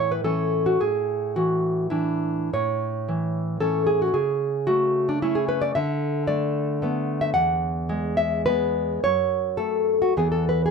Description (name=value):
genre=romantic piece for solo classical guitar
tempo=88-116 BPM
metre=3/4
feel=rubato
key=A major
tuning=A4 = 440 Hz
part: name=nylon-string guitar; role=solo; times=0.0-10.7 s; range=E2 to F#5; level=-21 LUFS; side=equal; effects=none
room=light reverb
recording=none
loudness=-21 LUFS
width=side -5 dB against mid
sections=0.0-10.7 A section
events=none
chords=0.0 A; 0.8 E7/A; 2.5 A; 4.1 A/C#; 5.8 Bm7/D; 7.4 E; 9.0 F#m; 10.2 E5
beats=0.25 | 0.81 1.36 1.92 | 2.53 3.08 3.61 | 4.14 4.68 5.22 | 5.76 6.29 6.83 | 7.35 7.89 8.46 | 9.03 9.58 10.16